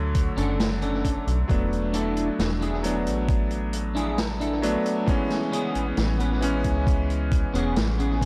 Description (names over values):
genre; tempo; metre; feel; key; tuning
vaporwave; 67 BPM; 4/4; straight; A major; A4 = 441 Hz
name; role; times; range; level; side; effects
bright electric grand piano; accompaniment; 0.0-8.3 s; D3 to C#5; -30 LUFS; equal; subtle chorus, dub echo
slap-like FM bass; bass; 0.0-8.3 s; E1 to D2; -29 LUFS; equal; none
street-band drum kit; drums; 0.1-8.3 s; hi-hat, snare drum; -33 LUFS; equal; dub echo
electronic kick drum; drums; 0.2-8.3 s; none; -27 LUFS; equal; none
clean electric guitar; riff; 0.4-8.3 s; B3 to B4; -32 LUFS; equal; analog chorus, dub echo
room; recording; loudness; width
light reverb, studio reverb; echo-heavy mix; -25 LUFS; mono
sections
0.0-8.3 A section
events
none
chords
0.0 Bm9 (rootless); 1.5 E7sus4; 5.1 Amaj9